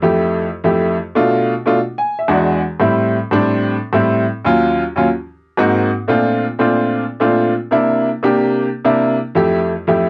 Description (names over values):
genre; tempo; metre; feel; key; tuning
jazz; 146 BPM; 4/4; straight; F major; A4 = 440 Hz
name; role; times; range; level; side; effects
clear upright piano; solo; 0.0-10.1 s; Eb2 to G#5; -16 LUFS; equal; none
room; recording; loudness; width
moderate booth ambience, RT60 0.2 s; home recording on cassette, nothing above 10.8 kHz; -16 LUFS; mono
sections
0.0-10.1 A section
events
upright piano fill 1.8-2.6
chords
0.0 Fmaj7; 1.0 Bm7b5; 1.8 E7; 2.6 Am7; 4.2 Ebm7; 5.1 Ab9; 5.9 Bbmaj9; 7.5 C7; 9.2 Fmaj7